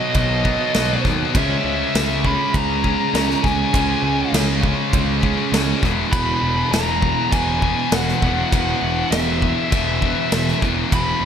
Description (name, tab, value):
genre	heavy metal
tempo	100 BPM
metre	4/4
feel	straight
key	unclear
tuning	A4 = 440 Hz
part	bluesy overdriven lead guitar	melody	0.0-11.3 s	D#5 to Cb6	-23 LUFS	equal	distortion
part	distorted electric guitar	riff	0.0-11.3 s	E2 to Db4	-25 LUFS	right 12 dB	distortion
part	scooped high-gain guitar	riff	0.0-11.3 s	E2 to Db4	-22 LUFS	left 8 dB	distortion
part	fuzz picked electric bass	bass	0.1-11.3 s	E1 to D#2	-24 LUFS	equal	overdrive
part	big rock drum kit	drums	0.1-11.1 s	crash cymbal, kick drum, snare drum	-22 LUFS	equal	gated reverb
room	light reverb, studio reverb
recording	bright 1980s-style digital production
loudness	-16 LUFS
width	side -8 dB against mid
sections	0.0-11.3 A section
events	none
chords	0.0 B; 1.3 Db5; 5.8 E5